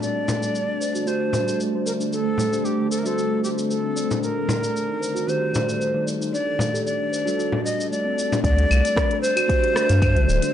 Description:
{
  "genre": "organic downtempo",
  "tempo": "114 BPM",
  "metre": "4/4",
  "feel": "straight",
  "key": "unclear",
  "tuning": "A4 = 436 Hz",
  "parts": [
    { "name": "breathy bright ney", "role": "melody", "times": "0.0-10.5 s", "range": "G4 to Eb5", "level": "-25 LUFS", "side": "equal", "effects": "analog delay" },
    { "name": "ethereal airy pad", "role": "sustained chords", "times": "0.0-10.5 s", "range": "D3 to A4", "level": "-30 LUFS", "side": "right 1 dB", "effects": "ensemble chorus, built-in reverb, phaser, sidechain pumping" },
    { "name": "steel tongue drum", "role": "arpeggios", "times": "0.0-10.5 s", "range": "A3 to D5", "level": "-28 LUFS", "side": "equal", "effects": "tape echo" },
    { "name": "organic electronic drum kit", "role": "drums", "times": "0.0-10.5 s", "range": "claves, hi-hat, rim click, shaker", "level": "-30 LUFS", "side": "left 1 dB", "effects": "none" },
    { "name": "bronze singing bowl", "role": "texture", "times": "0.0-8.5 s", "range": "G3 to A5", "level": "-42 LUFS", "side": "right 1 dB", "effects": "none" },
    { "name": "frame drum", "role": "percussion", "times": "0.3-8.4 s", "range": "none", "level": "-27 LUFS", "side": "left 2 dB", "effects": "none" },
    { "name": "mellow tine electric piano", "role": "accompaniment", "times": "1.1-10.5 s", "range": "Eb3 to D5", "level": "-28 LUFS", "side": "left 2 dB", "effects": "analog chorus, sidechain pumping, tape echo" },
    { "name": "round analog bass", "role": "bass", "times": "8.4-10.4 s", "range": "D1 to G2", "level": "-18 LUFS", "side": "equal", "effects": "tube saturation, sidechain pumping" },
    { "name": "electronic kick drum", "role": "drums", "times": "8.4-10.1 s", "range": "none", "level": "-23 LUFS", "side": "equal", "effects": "none" }
  ],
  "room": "light reverb, small room ambience",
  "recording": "dry, gritty hardware recording, nothing above 10.4 kHz",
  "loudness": "-20 LUFS",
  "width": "side -10 dB against mid",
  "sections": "0.0-8.4 A section; 8.4-10.5 B section",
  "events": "none",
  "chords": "0.0 D7sus4; 4.2 Ebmaj7; 6.3 Gsus2; 8.4 D7sus4",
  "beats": "| 0.02 0.55 1.07 1.60 | 2.13 2.65 3.18 3.71 | 4.23 4.76 5.28 5.81 | 6.34 6.86 7.39 7.92 | 8.44 8.97 9.49 10.02"
}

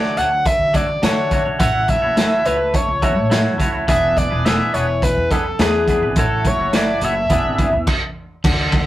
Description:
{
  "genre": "indie rock",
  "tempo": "105 BPM",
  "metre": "4/4",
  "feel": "straight",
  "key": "A major",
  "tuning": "A4 = 442 Hz",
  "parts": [
    { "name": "overdriven synth lead", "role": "melody", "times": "0.0-7.9 s", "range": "G#4 to F#5", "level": "-19 LUFS", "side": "left 1 dB", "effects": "none" },
    { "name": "twangy electric guitar", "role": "riff", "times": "0.0-8.9 s", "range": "D3 to C#5", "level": "-22 LUFS", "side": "right 1 dB", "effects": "none" },
    { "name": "raw garage drum kit", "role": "drums", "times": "0.0-8.9 s", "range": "crash cymbal, hi-hat, kick drum, ride cymbal, snare drum", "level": "-19 LUFS", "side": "equal", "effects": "none" },
    { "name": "upright bass", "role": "bass", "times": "0.2-8.9 s", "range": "E1 to D3", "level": "-24 LUFS", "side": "equal", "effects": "none" }
  ],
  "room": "moderate studio reverb, RT60 0.6 s",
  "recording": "rough rehearsal-room recording",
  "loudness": "-15 LUFS",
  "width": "side -14 dB against mid",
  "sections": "0.0-8.4 A section",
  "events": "stop 7.9-8.4",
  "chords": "0.0 Dmaj7; 1.6 A6; 3.9 E7; 6.2 A6; 7.3 E7",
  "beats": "0.46 1.03 | 1.60 2.17 2.75 3.32 | 3.89 4.46 5.03 5.60 | 6.17 6.74 7.31 7.88 | 8.45"
}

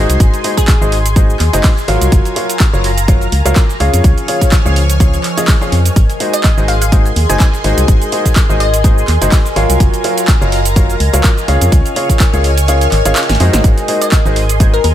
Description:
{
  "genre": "piano house",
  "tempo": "125 BPM",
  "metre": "4/4",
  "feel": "swing 55% on 16ths",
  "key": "unclear",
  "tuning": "A4 = 440 Hz",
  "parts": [
    { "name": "analog string pad", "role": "sustained chords", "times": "0.0-14.9 s", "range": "Ab4 to F6", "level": "-22 LUFS", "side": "equal", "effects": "ensemble chorus, phaser, sidechain pumping" },
    { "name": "clear upright piano", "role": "riff", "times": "0.0-14.8 s", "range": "Db3 to F5", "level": "-18 LUFS", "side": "left 1 dB", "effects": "vintage 12-bit sampler grit, sidechain pumping, dub echo" },
    { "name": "organ-like FM bass", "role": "bass", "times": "0.0-14.9 s", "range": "Gb1 to F2", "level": "-13 LUFS", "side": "equal", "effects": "sidechain pumping" },
    { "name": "warbly tape-like pad", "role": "texture", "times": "0.2-14.9 s", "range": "F3 to C6", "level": "-22 LUFS", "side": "equal", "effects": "chorus, built-in reverb, sidechain pumping" },
    { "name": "punchy analog drum machine", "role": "drums", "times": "0.1-14.9 s", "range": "handclaps, hi-hat, shaker, snare drum", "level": "-19 LUFS", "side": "right 2 dB", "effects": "overdrive" },
    { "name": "breakbeat sampler-style drum kit", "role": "drums", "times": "0.2-14.9 s", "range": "hi-hat, snare drum", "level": "-30 LUFS", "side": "left 1 dB", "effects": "none" },
    { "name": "electronic kick drum", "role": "drums", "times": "0.2-14.7 s", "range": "none", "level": "-10 LUFS", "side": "equal", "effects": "none" },
    { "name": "glassy wavetable pluck", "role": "melody", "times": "0.6-1.2, 6.3-9.3, 14.0-14.9 s", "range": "Ab4 to Ab5", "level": "-22 LUFS", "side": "left 2 dB", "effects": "chorus, dub echo" }
  ],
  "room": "digital ambience",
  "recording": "none",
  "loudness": "-9 LUFS",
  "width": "side -12 dB against mid",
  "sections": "0.0-14.9 A section",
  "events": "kick drops out 12.7-13.6; drum fill 13.3-13.6",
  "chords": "0.0 Ab7; 2.1 Gbmaj7; 3.8 Db; 6.0 Gbmaj7; 11.5 Db; 13.6 Gb",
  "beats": "| 0.20 0.68 1.16 1.64 | 2.12 2.60 3.08 3.56 | 4.04 4.52 5.00 5.48 | 5.96 6.44 6.92 7.40 | 7.88 8.36 8.84 9.32 | 9.80 10.28 10.76 11.24 | 11.72 12.20 12.68 13.16 | 13.64 14.12 14.60"
}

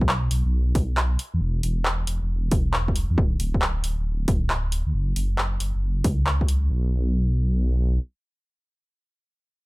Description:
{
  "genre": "UK garage, two-step garage",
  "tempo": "136 BPM",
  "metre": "4/4",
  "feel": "swing 66% on 16ths",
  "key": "unclear",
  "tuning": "A4 = 441 Hz",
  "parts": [
    { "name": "dark detuned saw bass", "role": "bass", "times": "0.0-8.0 s", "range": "D1 to E2", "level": "-22 LUFS", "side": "equal", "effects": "none" },
    { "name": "electronic kick drum", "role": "drums", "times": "0.0-6.5 s", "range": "none", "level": "-24 LUFS", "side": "equal", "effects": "none" },
    { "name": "punchy analog drum machine", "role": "drums", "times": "0.1-6.6 s", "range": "handclaps, hi-hat", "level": "-26 LUFS", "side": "equal", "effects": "none" }
  ],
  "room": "little or no reverb",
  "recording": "none",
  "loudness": "-21 LUFS",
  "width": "side -23 dB against mid",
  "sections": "0.0-6.7 A section; 6.7-9.7 B section",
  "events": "none",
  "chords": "none",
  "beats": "0.09 0.53 0.97 | 1.41 1.85 2.29 2.74 | 3.18 3.62 4.06 4.50 | 4.94 5.38 5.82 6.26 | 6.71 7.15 7.59"
}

